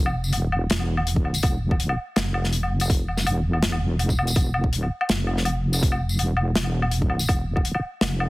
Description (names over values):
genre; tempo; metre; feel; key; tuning
half-time drum and bass; 164 BPM; 4/4; half-time; unclear; A4 = 440 Hz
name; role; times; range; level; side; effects
deep soft wobble bass; bass; 0.0-8.3 s; E1 to F1; -24 LUFS; equal; chorus
modern studio drum kit; drums; 0.1-8.3 s; hi-hat, snare drum, tambourine, woodblock; -25 LUFS; left 1 dB; none
electronic kick drum; drums; 1.2-7.6 s; none; -22 LUFS; equal; none
room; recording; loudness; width
little or no reverb; heavily compressed radio sound; -21 LUFS; side -20 dB against mid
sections
0.0-8.3 A section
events
none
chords
none